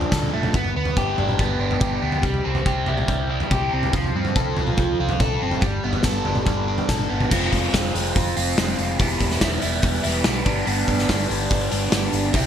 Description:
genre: indie rock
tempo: 142 BPM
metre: 4/4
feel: straight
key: unclear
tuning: A4 = 440 Hz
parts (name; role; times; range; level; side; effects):
- overdriven electric guitar; riff; 0.0-12.5 s; F3 to A4; -23 LUFS; equal; phaser
- hollow-body short-scale fingered electric bass; bass; 0.0-12.5 s; E1 to G2; -26 LUFS; equal; none
- loose indie drum kit; drums; 0.0-12.4 s; crash cymbal, hi-hat, kick drum, snare drum, toms; -23 LUFS; equal; gated reverb
room: moderate lush hall reverb, RT60 1.7 s, small room reverb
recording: bright 1980s-style digital production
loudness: -19 LUFS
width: side -9 dB against mid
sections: 0.0-7.3 A section; 7.3-12.5 B section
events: none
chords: 0.0 Dm; 0.5 G; 2.2 C; 3.9 F/C; 5.6 Gadd9; 7.3 Fm; 9.0 Em; 10.5 G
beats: 0.12 | 0.55 0.97 1.40 1.82 | 2.24 2.67 3.09 3.51 | 3.94 4.36 4.78 5.21 | 5.63 6.05 6.47 6.89 | 7.32 7.74 8.16 8.58 | 8.99 9.41 9.83 10.25 | 10.67 11.09 11.51 11.92 | 12.34

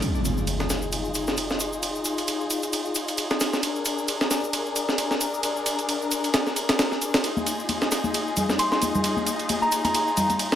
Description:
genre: breakbeat, breaks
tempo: 133 BPM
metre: 4/4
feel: swing 56% on 16ths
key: F dorian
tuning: A4 = 440 Hz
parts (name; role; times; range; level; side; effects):
- bright studio string section; stabs; 0.0-10.6 s; D4 to Bb4; -28 LUFS; left 3 dB; low-pass filter, tape echo
- breakbeat sampler-style drum kit; drums; 0.0-10.6 s; ride cymbal, snare drum; -26 LUFS; right 1 dB; high-pass filter on snare, high-pass filter on cymbals, high-pass filter on kick, high-pass filter on room
- shaker; drums; 0.0-10.6 s; none; -33 LUFS; left 3 dB; overdrive
- impact; sound effects; 0.0-1.8 s; none; -29 LUFS; equal; none
- congas; percussion; 7.4-10.4 s; none; -29 LUFS; left 2 dB; none
- soft synth bell; melody; 8.6-10.3 s; Bb5 to C6; -25 LUFS; equal; chorus, telephone sound, tape echo
room: light reverb, digital ambience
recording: none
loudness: -22 LUFS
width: side -10 dB against mid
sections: 0.0-10.6 A section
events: impact 0.0-1.8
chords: 0.0 Fm7; 3.6 Bb7; 7.2 Fm7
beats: | 0.02 0.47 0.93 1.38 | 1.83 2.28 2.73 3.18 | 3.63 4.08 4.54 4.99 | 5.44 5.89 6.34 6.79 | 7.24 7.69 8.14 8.60 | 9.05 9.50 9.95 10.40

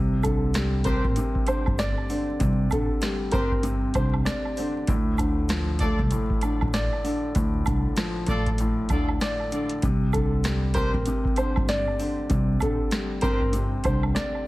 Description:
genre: hip hop, boom-bap hip-hop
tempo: 97 BPM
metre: 4/4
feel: swing 60% on 16ths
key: unclear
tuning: A4 = 440 Hz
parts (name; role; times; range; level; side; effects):
- dark baby grand piano; accompaniment; 0.0-14.5 s; A2 to D5; -28 LUFS; left 1 dB; high-pass filter, low-pass filter
- upright bass; bass; 0.0-14.1 s; G1 to D2; -26 LUFS; equal; none
- dark upright piano; melody; 0.2-4.1, 10.1-14.0 s; A4 to D5; -31 LUFS; equal; high-pass filter, low-pass filter, tape echo
- booming analog drum machine; drums; 0.2-14.3 s; hi-hat, kick drum, rim click, snare drum; -27 LUFS; equal; none
- egg shaker and woodblock; percussion; 0.2-14.5 s; none; -37 LUFS; right 5 dB; none
- bright trumpet section; stabs; 0.9-13.4 s; D4 to D5; -36 LUFS; equal; high-pass filter, low-pass filter, tape echo
room: small room ambience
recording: heavily compressed radio sound, vinyl crackle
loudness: -22 LUFS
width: side -18 dB against mid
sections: 0.0-14.5 A section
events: none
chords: 0.0 Csus2; 4.9 Dm; 9.8 Csus2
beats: 0.55 1.17 1.79 | 2.40 3.02 3.64 4.26 | 4.88 5.50 6.12 6.73 | 7.35 7.97 8.59 9.21 | 9.83 10.45 11.06 11.68 | 12.30 12.92 13.54 14.16

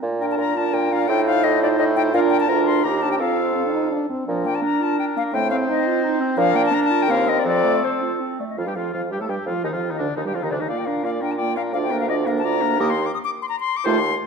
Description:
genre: quick classical-period movement for wind quintet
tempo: 170 BPM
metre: 3/4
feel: rubato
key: Bb major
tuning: A4 = 439 Hz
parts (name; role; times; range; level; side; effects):
- mellow clarinet; accompaniment; 0.0-14.0 s; F3 to A4; -25 LUFS; right 9 dB; none
- mellow bassoon; bass; 0.0-14.1 s; D2 to Bb2; -24 LUFS; right 2 dB; none
- bright concert flute; melody; 0.2-14.1 s; C5 to Eb6; -24 LUFS; left 8 dB; none
- clear oboe; second line; 0.2-14.0 s; D4 to D5; -29 LUFS; left 4 dB; none
- warm French horn; accompaniment; 0.2-14.0 s; D3 to Eb4; -26 LUFS; equal; none
room: moderate scoring stage reverb, RT60 1.4 s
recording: dark, warm production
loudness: -18 LUFS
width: side -5 dB against mid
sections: 0.0-8.6 A section; 8.6-14.3 B section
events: none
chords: 0.0 Bb; 1.1 F7/A; 2.1 Bb; 2.8 Eb; 3.2 F; 4.3 Bb; 5.3 F7/A; 6.4 Bb; 7.1 Eb5; 7.5 F; 8.6 Fadd9; 9.6 Ebmaj9; 10.7 Bb; 11.8 Bb/D; 12.8 Eb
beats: | 0.03 0.38 0.74 | 1.09 1.44 1.79 | 2.14 2.49 2.85 | 3.20 3.56 3.92 | 4.28 4.64 4.99 | 5.34 5.69 6.04 | 6.38 6.73 7.09 | 7.46 7.84 8.21 | 8.58 8.94 9.29 | 9.65 10.00 10.36 | 10.71 11.06 11.41 | 11.76 12.10 12.45 | 12.80 13.15 13.51 | 13.86

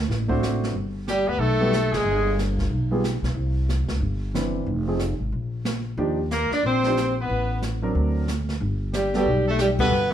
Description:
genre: jazz, small-group swing and bop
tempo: 183 BPM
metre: 4/4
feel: swing 62% on 8ths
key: G major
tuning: A4 = 440 Hz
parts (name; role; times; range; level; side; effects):
- upright bass; bass; 0.0-10.1 s; F1 to Eb2; -25 LUFS; equal; none
- jazz brush drum kit; drums; 0.1-10.1 s; brushed snare drum, hi-hat, kick drum, ride cymbal, snare drum; -31 LUFS; right 2 dB; none
- warm grand piano; accompaniment; 0.3-9.9 s; E3 to C5; -26 LUFS; right 2 dB; none
- clear alto saxophone; melody; 1.1-2.4, 6.3-10.1 s; G3 to D4; -23 LUFS; left 1 dB; plate reverb
- brilliant trumpet; second line; 1.1-2.4, 6.3-10.1 s; G4 to D5; -29 LUFS; right 3 dB; none
room: moderate studio reverb, RT60 0.8 s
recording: heard from further back in the room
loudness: -21 LUFS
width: side -10 dB against mid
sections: 0.7-10.1 A section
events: band accent 1.9, 9.7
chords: 0.0 D7; 0.7 Gmaj9; 2.0 G(b9); 3.4 Cmaj9; 4.7 Fm7; 5.3 N.C.; 6.0 Ebmaj9; 7.3 Amadd9; 8.0 Daug7; 8.6 Gmaj9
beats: 0.09 0.41 | 0.74 1.07 1.39 1.72 | 2.05 2.38 2.71 3.03 | 3.36 3.69 4.02 4.34 | 4.67 5.00 5.33 5.66 | 5.99 6.31 6.64 6.97 | 7.29 7.62 7.95 8.28 | 8.60 8.93 9.26 9.59 | 9.91

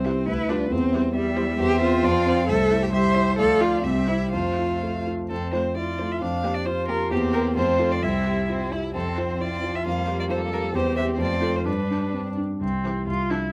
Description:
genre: quick classical-period movement for piano quintet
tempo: 120-138 BPM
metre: 2/4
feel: rubato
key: F major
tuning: A4 = 440 Hz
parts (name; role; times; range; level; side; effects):
- rich violin; melody; 0.0-13.5 s; G4 to F5; -32 LUFS; equal; none
- clear violin; second line; 0.0-13.5 s; Bb3 to F5; -35 LUFS; equal; none
- rich cello; second line; 0.0-13.5 s; E3 to C5; -29 LUFS; equal; none
- dark concert grand piano; accompaniment; 0.0-13.5 s; C2 to F5; -27 LUFS; equal; none
- rich viola; accompaniment; 0.1-13.5 s; F3 to A4; -34 LUFS; equal; none
room: light reverb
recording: close, detailed microphones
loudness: -24 LUFS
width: mono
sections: 0.0-5.3 A section; 5.3-12.6 B section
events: none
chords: 0.3 G7/D; 0.7 C/E; 2.0 F5; 2.5 C; 3.4 Dm; 3.8 C; 4.3 F; 6.2 Gm7/F; 7.1 C7/E; 7.6 F; 8.0 C; 8.9 F5; 9.9 Gm7/F; 10.7 C/E; 11.2 F; 11.7 G; 12.6 C; 13.1 Dm7/C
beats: 0.28 | 0.72 1.16 | 1.60 2.04 | 2.49 2.93 | 3.38 3.84 | 4.32 4.82 | 5.30 5.76 | 6.21 6.66 | 7.11 7.56 | 8.02 8.48 | 8.95 9.40 | 9.86 10.30 | 10.74 11.19 | 11.67 12.14 | 12.62 13.08

